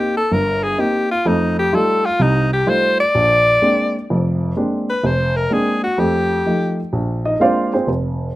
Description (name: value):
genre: jazz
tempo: 127 BPM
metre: 4/4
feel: swing 66% on 8ths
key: unclear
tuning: A4 = 440 Hz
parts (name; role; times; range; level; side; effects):
- edgy alto saxophone; melody; 0.0-6.9 s; Eb4 to D5; -17 LUFS; left 1 dB; none
- dark baby grand piano; accompaniment; 0.0-8.3 s; F1 to F5; -18 LUFS; right 1 dB; none
room: small room ambience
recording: rough home demo mix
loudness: -15 LUFS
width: side -16 dB against mid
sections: 0.0-6.9 A section; 6.9-8.4 B section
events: none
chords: 0.0 Cm7; 1.2 F9; 3.1 Bb9; 6.0 F7; 6.9 Bb9